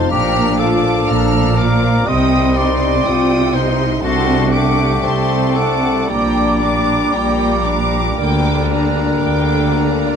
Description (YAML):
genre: classical, slow romantic movement for symphony orchestra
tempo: 54-62 BPM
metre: 4/4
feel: rubato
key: G minor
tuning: A4 = 440 Hz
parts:
  - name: rich studio violin section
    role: melody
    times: 0.0-10.2 s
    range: Bb5 to F6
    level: -26 LUFS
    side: left 2 dB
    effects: none
  - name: bright small flute group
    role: second line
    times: 0.0-10.2 s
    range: D5 to Eb6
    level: -24 LUFS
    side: right 3 dB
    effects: none
  - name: rich studio violin section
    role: second line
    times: 0.0-10.2 s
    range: D5 to Bb5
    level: -26 LUFS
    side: left 4 dB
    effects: none
  - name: warm clarinet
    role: second line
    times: 0.0-10.2 s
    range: D4 to Eb5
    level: -22 LUFS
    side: left 4 dB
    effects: none
  - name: warm cor anglais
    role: second line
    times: 0.0-10.2 s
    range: Bb4 to A5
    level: -27 LUFS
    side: right 1 dB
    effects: none
  - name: rich studio viola section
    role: accompaniment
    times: 0.0-10.2 s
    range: Bb3 to F4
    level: -25 LUFS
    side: equal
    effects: none
  - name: warm bassoon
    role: accompaniment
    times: 0.0-10.2 s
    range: F3 to A3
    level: -25 LUFS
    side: equal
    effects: none
  - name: warm French horn section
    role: sustained chords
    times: 0.0-10.2 s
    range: G3 to F4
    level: -23 LUFS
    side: left 5 dB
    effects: none
  - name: clear studio cello section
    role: bass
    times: 0.1-10.2 s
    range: Bb2 to D3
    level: -19 LUFS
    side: right 2 dB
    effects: none
  - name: rich studio double bass section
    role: bass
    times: 0.1-10.2 s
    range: Bb1 to D2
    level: -20 LUFS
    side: right 2 dB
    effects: none
room: light reverb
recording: none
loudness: -13 LUFS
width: side -7 dB against mid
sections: 0.0-10.2 A section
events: none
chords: 0.1 Bb; 2.1 Cm; 4.0 D7/C; 6.1 Gm/Bb; 8.2 Gm/D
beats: | 0.11 1.09 2.07 3.05 | 4.03 5.03 6.10 7.13 | 8.19 9.23